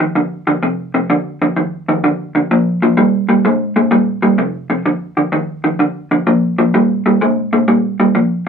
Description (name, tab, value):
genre	blues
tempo	128 BPM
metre	4/4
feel	swing 67% on 8ths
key	unclear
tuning	A4 = 440 Hz
part	electric guitar through a small old amp	solo	0.0-8.4 s	F2 to Ab3	-12 LUFS	equal	none
room	moderate small room reverb, RT60 0.5 s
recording	none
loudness	-13 LUFS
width	side -7 dB against mid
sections	0.0-8.5 A section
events	none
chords	0.0 F5; 2.5 Bb5; 4.4 F5; 6.3 Bb5